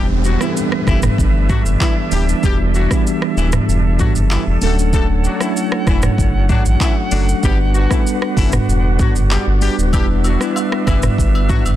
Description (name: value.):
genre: afrobeats.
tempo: 96 BPM.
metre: 4/4.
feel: straight.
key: unclear.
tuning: A4 = 445 Hz.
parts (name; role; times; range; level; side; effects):
mellow horn section; second line; 0.0-11.6 s; E3 to A4; -26 LUFS; left 5 dB; none.
mellow tine electric piano; accompaniment; 0.0-11.8 s; E3 to B4; -20 LUFS; equal; medium stereo tremolo.
flute section; sustained chords; 0.0-11.8 s; D4 to F#5; -26 LUFS; right 3 dB; none.
sub bass with octave; bass; 0.0-11.8 s; D1 to A1; -16 LUFS; equal; none.
downlifter; sound effects; 0.0-4.9 s; none; -28 LUFS; right 1 dB; none.
afro-pop drum kit; drums; 0.2-11.8 s; handclaps, hi-hat, kick drum, rim click, shaker, toms; -18 LUFS; equal; none.
agogo bells and woodblock; percussion; 9.9-11.8 s; none; -29 LUFS; left 3 dB; none.
room: digital ambience.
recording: dense, heavily limited modern master.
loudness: -13 LUFS.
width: side -13 dB against mid.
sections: 0.0-11.8 A section.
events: none.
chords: 0.0 Em7; 4.6 Dmaj7; 7.4 Gmaj7.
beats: 0.56 1.18 1.81 | 2.43 3.06 3.68 4.31 | 4.93 5.56 6.18 6.81 | 7.43 8.06 8.68 9.31 | 9.93 10.56 11.18.